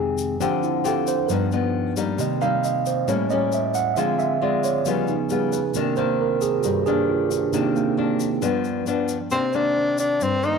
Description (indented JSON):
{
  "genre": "bossa nova",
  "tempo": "135 BPM",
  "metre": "4/4",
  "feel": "straight",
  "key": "C minor",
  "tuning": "A4 = 438 Hz",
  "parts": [
    { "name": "mellow tine electric piano", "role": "accompaniment", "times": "0.0-10.6 s", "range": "F2 to F#5", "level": "-23 LUFS", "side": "right 8 dB", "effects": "none" },
    { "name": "nylon-string guitar", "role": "accompaniment", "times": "0.0-10.6 s", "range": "G2 to Ab4", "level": "-24 LUFS", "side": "left 9 dB", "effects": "none" },
    { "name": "tube shaker", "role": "percussion", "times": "0.2-10.6 s", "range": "none", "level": "-37 LUFS", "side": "left 10 dB", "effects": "none" },
    { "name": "breathy tenor saxophone", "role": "melody", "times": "9.3-10.6 s", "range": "C4 to Eb4", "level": "-20 LUFS", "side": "left 1 dB", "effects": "none" }
  ],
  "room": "moderate plate reverb, RT60 2.3 s",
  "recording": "1960s-style stereo with parts hard left and right",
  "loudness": "-20 LUFS",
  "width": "side -5 dB against mid",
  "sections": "0.0-9.3 A section; 9.3-10.6 B section",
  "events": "tine electric piano solo 0.0-9.3",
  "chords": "0.4 Dm7; 1.3 G7b13; 2.2 Cm7; 3.1 A7b9; 4.0 Dm7b5; 4.9 Db7#11; 5.7 Cm9; 8.4 G7; 9.3 Cm9"
}